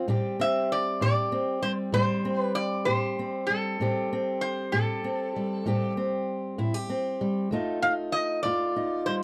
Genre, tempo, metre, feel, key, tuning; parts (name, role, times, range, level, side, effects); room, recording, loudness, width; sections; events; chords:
acoustic country blues, solo or duo; 64 BPM (dotted quarters); 12/8; straight; A minor; A4 = 442 Hz
fingerpicked steel-string acoustic guitar; accompaniment; 0.0-9.2 s; F2 to G4; -30 LUFS; equal
metal-body resonator slide guitar; melody; 0.4-9.1 s; A4 to F5; -30 LUFS; equal
light reverb; dry, close 1970s-style studio recording; -28 LUFS; mono
0.0-9.2 A section
0.1 Am7; 7.5 F7